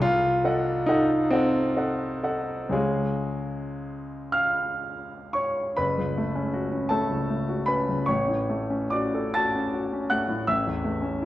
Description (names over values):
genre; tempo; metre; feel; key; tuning
classical, romantic nocturne for solo piano; 36-55 BPM (dotted quarters); 12/8; rubato; unclear; A4 = 440 Hz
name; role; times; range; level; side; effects
warm grand piano; solo; 0.0-11.3 s; F#1 to A6; -23 LUFS; equal; none
room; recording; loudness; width
wet recital hall reverb, RT60 1.9 s; worn, warbling old tape, cassette tape, warbly pitch drift, nothing above 10.6 kHz; -23 LUFS; side -14 dB against mid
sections
0.0-5.8 A section; 5.8-11.3 B section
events
none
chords
0.0 Cdim7; 2.7 C#; 5.8 F#m; 8.1 F#m/A; 10.5 A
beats
| 0.03 1.33 2.74 4.35 | 5.79 6.94 8.08 9.34 | 10.46